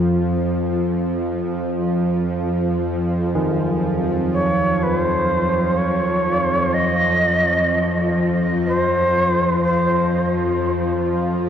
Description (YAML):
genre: dark ambient drone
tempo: 62 BPM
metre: 4/4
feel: straight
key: unclear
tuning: A4 = 440 Hz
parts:
  - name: bowed-like drone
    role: drone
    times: 0.0-11.5 s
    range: F2 to F3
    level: -19 LUFS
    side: equal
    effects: built-in reverb
  - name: carillon bells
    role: arpeggios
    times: 3.4-9.2 s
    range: Eb3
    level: -27 LUFS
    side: right 1 dB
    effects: tape echo
  - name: bright reedy shakuhachi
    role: melody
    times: 4.3-10.3 s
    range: C5 to Eb5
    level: -19 LUFS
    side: right 1 dB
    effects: tape echo
room: wet cathedral reverb, RT60 5.2 s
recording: worn, warbling old tape, cassette tape, warbly pitch drift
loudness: -17 LUFS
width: side -8 dB against mid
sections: 0.0-11.5 A section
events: none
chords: 0.0 F5; 2.9 Ab (rootless)